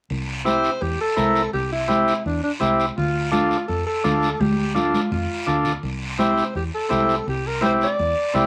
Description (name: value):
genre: latin, cumbia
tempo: 167 BPM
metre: 4/4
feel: straight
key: unclear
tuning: A4 = 439 Hz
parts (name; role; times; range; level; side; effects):
- deep dub fingered electric bass; bass; 0.1-8.5 s; C2 to F2; -30 LUFS; equal; none
- congas; percussion; 0.1-8.5 s; none; -28 LUFS; equal; none
- guiro; percussion; 0.1-8.5 s; none; -35 LUFS; equal; none
- combo organ; accompaniment; 0.4-8.5 s; C4 to Bb4; -23 LUFS; equal; none
- breathy alto saxophone; melody; 0.5-8.5 s; D4 to D5; -27 LUFS; equal; none
room: wet club reverb, RT60 0.5 s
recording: vinyl crackle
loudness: -22 LUFS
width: mono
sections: 0.1-8.5 A section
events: drum fill 4.4-5.8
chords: 0.1 C; 3.0 Dm; 5.8 Cadd9